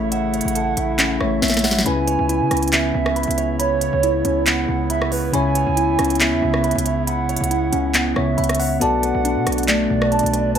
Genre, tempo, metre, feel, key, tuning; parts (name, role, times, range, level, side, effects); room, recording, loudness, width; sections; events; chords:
hip hop, trap; 138 BPM; 4/4; half-time; C# phrygian; A4 = 441 Hz
hollow clarinet-like synth lead; second line; 0.0-10.6 s; B4 to G#5; -23 LUFS; right 7 dB; chorus, tape echo
bell-like tine electric piano; accompaniment; 0.0-10.6 s; C#3 to F#5; -25 LUFS; left 6 dB
warm woodwind section; sustained chords; 0.0-10.6 s; B2 to E4; -29 LUFS; equal; stereo widening
mellow electric guitar; arpeggios; 0.0-10.6 s; B2 to B5; -22 LUFS; equal; spring reverb, tape echo
hard-hitting 808-style bass; bass; 0.0-10.6 s; A1 to C#3; -25 LUFS; left 1 dB
trap drum kit; drums; 0.1-10.6 s; handclaps, hi-hat, rim click, snare drum; -21 LUFS; equal
light reverb; -16 LUFS; side -8 dB against mid
0.0-1.9 A section; 1.9-10.6 A section
drum fill 1.4-1.9
0.0 A; 1.9 C#m7; 8.8 Bm7